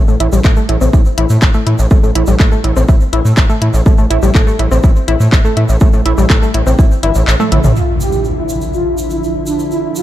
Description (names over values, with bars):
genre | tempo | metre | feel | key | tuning
melodic techno | 123 BPM | 4/4 | straight | unclear | A4 = 440 Hz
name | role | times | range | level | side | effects
analog pluck | arpeggios | 0.0-7.6 s | G3 to E4 | -17 LUFS | equal | chorus, sidechain pumping, dub echo
gritty driven synth bass | bass | 0.0-7.7 s | G1 to A2 | -13 LUFS | equal | distortion, sidechain pumping
egg shaker | percussion | 0.1-10.0 s | none | -31 LUFS | right 3 dB | none
house drum kit | drums | 0.2-7.7 s | handclaps, hi-hat, toms | -18 LUFS | equal | none
electronic kick drum | drums | 0.4-6.9 s | none | -9 LUFS | equal | none
analog synth brass | melody | 7.8-10.0 s | D4 to G4 | -18 LUFS | right 1 dB | chorus, vintage 12-bit sampler grit, ping-pong delay
lush unison pad | sustained chords | 7.8-10.0 s | D3 to E4 | -21 LUFS | equal | chorus, sidechain pumping
impact | sound effects | 7.8-9.7 s | none | -20 LUFS | equal | none
room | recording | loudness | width
digital ambience | dark, warm production | -9 LUFS | side -13 dB against mid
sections
0.0-7.8 A section; 7.8-10.0 B section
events
filter sweep on synth arpeggio sound 0.0-7.8; kick drops out 7.3-7.8; drum fill 7.4-7.8; impact 7.8-9.7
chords
0.0 Am7; 7.8 Dmadd9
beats
0.45 0.93 1.42 | 1.91 2.40 2.89 3.37 | 3.86 4.35 4.84 5.33 | 5.81 6.30 6.79 7.28 | 7.76 8.25 8.74 9.23 | 9.71